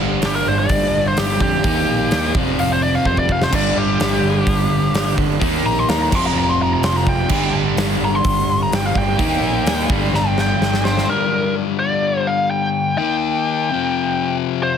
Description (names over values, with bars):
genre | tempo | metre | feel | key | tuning
hard rock | 127 BPM | 4/4 | straight | G minor | A4 = 444 Hz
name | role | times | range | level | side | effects
crunchy overdriven guitar | riff | 0.0-14.8 s | F2 to Eb4 | -22 LUFS | left 11 dB | none
crunchy overdriven guitar | riff | 0.0-11.1 s | F2 to Eb4 | -23 LUFS | right 10 dB | none
fingered electric bass | bass | 0.0-11.0 s | F1 to F2 | -24 LUFS | right 1 dB | none
huge arena drum kit | drums | 0.2-11.1 s | crash cymbal, hi-hat, kick drum, snare drum | -21 LUFS | equal | none
biting lead guitar | melody | 0.3-14.8 s | G4 to C6 | -20 LUFS | left 1 dB | overdrive
crunchy overdriven guitar | riff | 3.5-11.1 s | F2 to Eb4 | -25 LUFS | right 1 dB | none
room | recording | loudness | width
light reverb | dense, heavily limited modern master | -15 LUFS | side -8 dB against mid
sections
0.0-11.1 A section; 11.1-14.8 B section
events
lead electric guitar solo 0.0-11.1; drum fill 3.0-3.5, 10.1-11.1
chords
0.0 G5; 1.6 Eb; 2.3 F5; 3.5 G5; 5.4 Eb5; 6.1 F5; 7.3 G5; 9.2 Eb; 9.9 G5; 13.0 Eb; 13.7 F5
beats
0.22 0.69 1.17 | 1.64 2.11 2.58 3.05 | 3.52 3.99 4.46 4.94 | 5.41 5.88 6.35 6.83 | 7.30 7.77 8.24 8.72 | 9.19 9.66 10.14 10.61 | 11.08 11.56 12.03 12.51 | 12.98 13.46 13.93 14.40